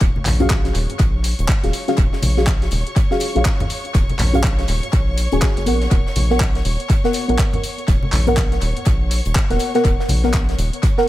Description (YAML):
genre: deep house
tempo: 122 BPM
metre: 4/4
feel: swing 60% on 16ths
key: Eb minor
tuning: A4 = 440 Hz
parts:
  - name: deep mellow chord stab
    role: stabs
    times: 0.0-11.1 s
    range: Cb4 to Ab5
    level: -21 LUFS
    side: equal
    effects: chorus, sidechain pumping, tape echo
  - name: rubbery square bass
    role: bass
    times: 0.0-10.7 s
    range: Eb1 to Bb1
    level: -20 LUFS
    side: equal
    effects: sidechain pumping
  - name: deep house drum kit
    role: drums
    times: 0.0-10.9 s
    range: handclaps, hi-hat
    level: -26 LUFS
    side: equal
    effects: tape echo
  - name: electronic kick drum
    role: drums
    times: 0.0-10.9 s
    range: none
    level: -17 LUFS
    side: equal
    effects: none
  - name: modern studio drum kit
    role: drums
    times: 0.0-11.1 s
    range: hi-hat, snare drum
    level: -36 LUFS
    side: left 3 dB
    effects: sidechain pumping on hats, high-pass filter on hats, high-pass filter on snare, high-pass filter on room
  - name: rich studio violin section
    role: texture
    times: 0.0-11.1 s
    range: Db5 to Db6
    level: -31 LUFS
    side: equal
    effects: sidechain pumping
  - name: congas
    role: percussion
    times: 0.2-10.2 s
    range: none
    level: -26 LUFS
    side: left 1 dB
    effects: sidechain pumping on perc, tape echo
room: small room reverb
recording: echo-heavy mix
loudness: -15 LUFS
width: side -15 dB against mid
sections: 0.0-11.1 A section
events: none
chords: 0.0 Ebm11